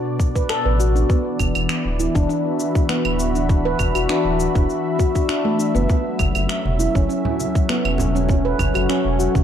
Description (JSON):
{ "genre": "organic downtempo", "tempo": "100 BPM", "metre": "4/4", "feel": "straight", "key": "unclear", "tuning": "A4 = 440 Hz", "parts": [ { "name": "warm analog pad", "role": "sustained chords", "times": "0.0-9.4 s", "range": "B2 to B5", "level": "-24 LUFS", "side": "left 2 dB", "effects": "chorus, sidechain pumping" }, { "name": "electronic cabasa, finger snaps and claves", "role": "drums", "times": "0.2-9.4 s", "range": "none", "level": "-27 LUFS", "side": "right 2 dB", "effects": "none" }, { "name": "electronic kick drum", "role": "drums", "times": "0.2-9.4 s", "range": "none", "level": "-19 LUFS", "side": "equal", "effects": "none" }, { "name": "handpan", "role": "arpeggios", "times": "0.4-9.4 s", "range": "A3 to B4", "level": "-22 LUFS", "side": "right 1 dB", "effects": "tape echo" }, { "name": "round analog bass", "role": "bass", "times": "0.7-9.4 s", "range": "D1 to A1", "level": "-22 LUFS", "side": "equal", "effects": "sidechain pumping" }, { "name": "bongos and congas", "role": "percussion", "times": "5.9-9.4 s", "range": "none", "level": "-29 LUFS", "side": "right 2 dB", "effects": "none" } ], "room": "light reverb, digital ambience", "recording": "dark, warm production", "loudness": "-17 LUFS", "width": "side -9 dB against mid", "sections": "0.0-9.4 A section", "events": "none", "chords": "0.0 Bm7; 1.1 Esus2; 5.9 F#m7", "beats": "0.49 | 1.09 1.69 2.29 2.89 | 3.49 4.09 4.69 5.29 | 5.89 6.49 7.09 7.69 | 8.29 8.89" }